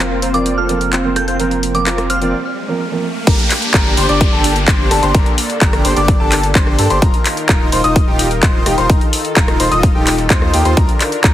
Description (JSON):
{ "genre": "EDM, festival progressive house", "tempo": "128 BPM", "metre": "4/4", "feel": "straight", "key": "unclear", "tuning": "A4 = 440 Hz", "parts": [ { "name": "lush unison pad", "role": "sustained chords", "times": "0.0-11.3 s", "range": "D3 to Bb4", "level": "-24 LUFS", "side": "equal", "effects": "chorus, sidechain pumping" }, { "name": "dense compressed supersaw", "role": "riff", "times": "0.0-11.3 s", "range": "C4 to Eb5", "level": "-19 LUFS", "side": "equal", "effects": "sidechain pumping, low-pass filter, tape echo" }, { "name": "saturated sub bass", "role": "bass", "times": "0.0-11.3 s", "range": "Eb1 to G2", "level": "-20 LUFS", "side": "equal", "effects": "sidechain pumping" }, { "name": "riser and downlifter", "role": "sound effects", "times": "1.7-7.0 s", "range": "none", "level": "-24 LUFS", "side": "left 1 dB", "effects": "none" }, { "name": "house drum kit", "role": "drums", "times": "0.2-11.3 s", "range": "crash cymbal, handclaps, hi-hat, rim click", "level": "-18 LUFS", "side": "left 1 dB", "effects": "none" }, { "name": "soft synth bell", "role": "melody", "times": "0.3-2.2 s", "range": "D6 to G6", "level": "-22 LUFS", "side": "right 2 dB", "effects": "chorus, tape echo" }, { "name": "dark concert grand piano", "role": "accompaniment", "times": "0.3-3.0 s", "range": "F3 to Bb4", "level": "-22 LUFS", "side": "right 4 dB", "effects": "sidechain pumping, tape echo" }, { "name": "clear baby grand piano", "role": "arpeggios", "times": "3.3-11.3 s", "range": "G5 to Eb6", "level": "-20 LUFS", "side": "left 2 dB", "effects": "sidechain pumping, tape echo" }, { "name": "electronic kick drum", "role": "drums", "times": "3.3-11.3 s", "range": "none", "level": "-13 LUFS", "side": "equal", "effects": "overdrive" } ], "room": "light reverb", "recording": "heavily compressed radio sound", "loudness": "-11 LUFS", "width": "side -12 dB against mid", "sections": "0.0-3.3 A section; 3.3-11.3 B section", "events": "riser 1.7-3.3; break 2.3-3.3; drop 3.3-11.3", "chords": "0.0 Fsus4; 3.3 Gm; 7.0 Ebsus2; 10.8 Bb/D" }